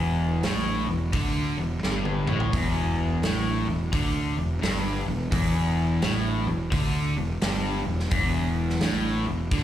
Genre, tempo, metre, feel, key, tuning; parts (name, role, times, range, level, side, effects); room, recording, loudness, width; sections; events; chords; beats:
blues rock power trio and southern rock; 86 BPM; 4/4; swing 63% on 8ths; E minor; A4 = 441 Hz
crunchy overdriven guitar; riff; 0.0-9.6 s; E2 to D3; -26 LUFS; left 1 dB; slapback echo
fuzz fingered electric bass; bass; 0.0-9.6 s; E1 to D2; -28 LUFS; equal; overdrive
huge arena drum kit; drums; 0.4-9.6 s; hi-hat, kick drum, snare drum, toms; -29 LUFS; right 1 dB
studio reverb; live gig heard through the venue's PA, club reverb; -23 LUFS; side -11 dB against mid
0.0-9.6 A section
drum fill 1.8-2.5
0.0 Em
0.44 1.13 1.83 | 2.53 3.23 3.93 4.62 | 5.32 6.02 6.72 7.42 | 8.12 8.82 9.52